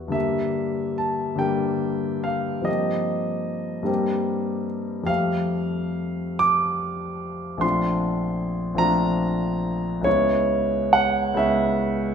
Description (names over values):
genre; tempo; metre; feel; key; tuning
classical, impressionist solo piano; 48 BPM (dotted quarters); 6/8; uneven beats, rubato; G minor; A4 = 439 Hz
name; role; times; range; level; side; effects
clear concert grand piano; solo; 0.0-12.1 s; Bb1 to D6; -21 LUFS; equal; none
room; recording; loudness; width
wet recital hall reverb, RT60 1.4 s; minimal, uncompressed stereo recording; -21 LUFS; side -7 dB against mid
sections
0.1-12.1 A section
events
none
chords
0.1 Gm6; 2.7 Eb69/G; 3.9 Cm7/G; 5.1 Fadd9; 7.6 Bbmaj9; 10.1 C#m7